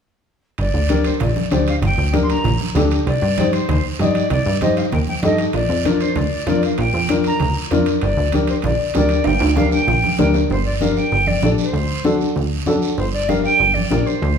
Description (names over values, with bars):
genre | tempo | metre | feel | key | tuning
latin, cumbia | 194 BPM | 4/4 | straight | G minor, G harmonic minor from 10.5 s | A4 = 440 Hz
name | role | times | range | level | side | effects
jazz flute | melody | 0.6-14.4 s | C5 to C6 | -22 LUFS | equal | none
plucky analog bass | bass | 0.6-14.4 s | G1 to G2 | -20 LUFS | right 1 dB | none
guiro | percussion | 0.6-14.4 s | none | -32 LUFS | right 6 dB | none
timbales | percussion | 0.6-10.4 s | none | -29 LUFS | right 5 dB | none
dark upright piano | accompaniment | 0.9-14.1 s | D4 to Eb5 | -20 LUFS | left 3 dB | none
congas | percussion | 0.9-14.1 s | none | -24 LUFS | equal | none
room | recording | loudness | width
wet large studio reverb, RT60 1.2 s | band playing live in one room | -15 LUFS | side -7 dB against mid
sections
0.6-10.5 A section; 10.5-14.4 B section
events
drum fill 9.3-10.5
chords
0.6 Gm; 3.1 Cm; 5.5 Bb; 8.0 Gm; 11.7 D7; 13.0 Gm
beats
| 0.59 0.90 1.21 1.52 | 1.83 2.14 2.45 2.76 | 3.07 3.38 3.69 4.00 | 4.31 4.62 4.93 5.24 | 5.54 5.85 6.16 6.47 | 6.78 7.09 7.40 7.71 | 8.02 8.33 8.64 8.95 | 9.26 9.57 9.88 10.19 | 10.50 10.81 11.12 11.43 | 11.74 12.05 12.36 12.67 | 12.98 13.29 13.60 13.91 | 14.22